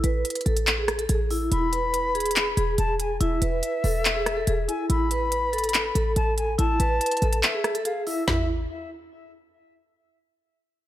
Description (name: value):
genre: hip hop, trap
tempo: 142 BPM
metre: 4/4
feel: half-time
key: unclear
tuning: A4 = 440 Hz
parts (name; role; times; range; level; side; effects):
- vibraphone with medium mallets; melody; 0.0-8.5 s; E4 to B4; -27 LUFS; equal; low-pass filter, digital delay
- short 808-style bass; bass; 0.0-8.7 s; E1 to A1; -26 LUFS; equal; none
- trap drum kit; drums; 0.0-8.4 s; handclaps, hi-hat, rim click, snare drum, toms; -26 LUFS; equal; none
- silver concert flute; second line; 1.5-8.5 s; E5 to B5; -28 LUFS; left 3 dB; digital delay
room: light reverb, studio reverb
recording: none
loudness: -22 LUFS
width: side -13 dB against mid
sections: 0.0-8.3 A section; 8.3-10.0 B section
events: break 7.4-8.3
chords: 0.0 Asus2; 1.5 E; 4.9 A5